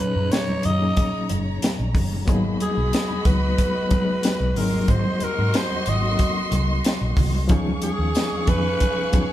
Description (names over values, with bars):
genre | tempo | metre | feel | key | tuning
lush 1970s-style soul | 92 BPM | 4/4 | straight | G# dorian | A4 = 443 Hz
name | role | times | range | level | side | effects
growling alto saxophone | melody | 0.0-9.3 s | G#4 to D#5 | -26 LUFS | equal | none
warm studio violin section | second line | 0.0-9.3 s | D#4 to C#6 | -30 LUFS | equal | none
reed electric piano | accompaniment | 0.0-9.3 s | A#2 to B4 | -26 LUFS | left 2 dB | fast tremolo
vintage muted fingered electric bass | bass | 0.0-8.8 s | F#1 to G#2 | -24 LUFS | equal | none
tight funk drum kit | drums | 0.3-9.3 s | hi-hat, kick drum, snare drum | -23 LUFS | equal | none
congas | percussion | 0.3-9.3 s | none | -31 LUFS | right 4 dB | none
tambourine | percussion | 2.9-8.3 s | none | -39 LUFS | left 3 dB | none
room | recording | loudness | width
moderate large studio reverb, RT60 0.8 s | band playing live in one room | -19 LUFS | side -13 dB against mid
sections
0.0-9.3 A section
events
none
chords
0.0 F#69; 2.3 G#m9; 4.6 G#9; 7.5 C#9